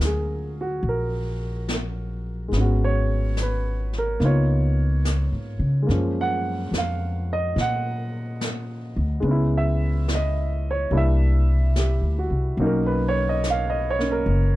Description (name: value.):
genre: jazz ballad.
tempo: 72 BPM.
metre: 4/4.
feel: swing 69% on 8ths.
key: unclear.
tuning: A4 = 441 Hz.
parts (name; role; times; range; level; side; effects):
warm baby grand piano; accompaniment; 0.0-14.6 s; F3 to Gb5; -26 LUFS; right 1 dB; none.
upright bass; bass; 0.0-14.6 s; F#1 to Db3; -22 LUFS; equal; none.
jazz brush drum kit; drums; 0.0-14.6 s; brushed snare drum, hi-hat, snare drum; -32 LUFS; equal; none.
room: little or no reverb.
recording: none.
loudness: -21 LUFS.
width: side -16 dB against mid.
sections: 0.0-14.6 A section.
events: none.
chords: 0.0 Ebm11 (rootless); 2.5 Abm7; 4.2 Db13; 5.9 Gbmaj9; 9.2 Dbm7; 10.9 C9; 12.6 Bmaj9.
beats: 0.84 1.68 | 2.52 3.36 4.20 5.04 | 5.88 6.72 7.56 8.40 | 9.24 10.08 10.92 11.76 | 12.60 13.44 14.28.